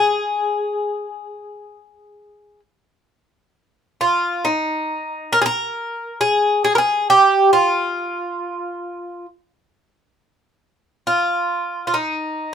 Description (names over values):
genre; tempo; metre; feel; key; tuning
fado; 68 BPM; 4/4; rubato; unclear; A4 = 440 Hz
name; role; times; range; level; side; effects
Irish bouzouki; solo; 0.0-12.5 s; Eb4 to Bb4; -17 LUFS; equal; none
room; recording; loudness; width
light reverb; minimal, uncompressed stereo recording; -17 LUFS; side -8 dB against mid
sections
0.0-3.5 A section; 3.5-12.5 B section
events
none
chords
none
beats
0.80 1.70 2.62 | 3.54 4.43 5.32 6.22 | 7.10 7.98 8.86 9.74 | 10.61 11.48 12.37